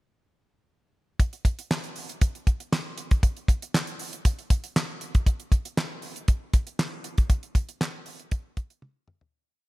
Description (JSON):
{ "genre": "funk", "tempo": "118 BPM", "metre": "4/4", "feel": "straight", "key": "none", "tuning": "none", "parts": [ { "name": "damped 70s drum kit", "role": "drums", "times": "1.2-9.3 s", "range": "handclaps, hi-hat, kick drum, snare drum, toms", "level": "-24 LUFS", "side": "equal", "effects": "none" } ], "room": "little or no reverb", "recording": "none", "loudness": "-24 LUFS", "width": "side -21 dB against mid", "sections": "1.2-9.3 verse", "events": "fade-out 7.3-9.3; drum fill 8.8-9.3", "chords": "none", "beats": "| 1.20 1.71 2.21 2.72 | 3.23 3.74 4.25 4.76 | 5.26 5.77 6.28 6.79 | 7.30 7.81 8.32 8.82" }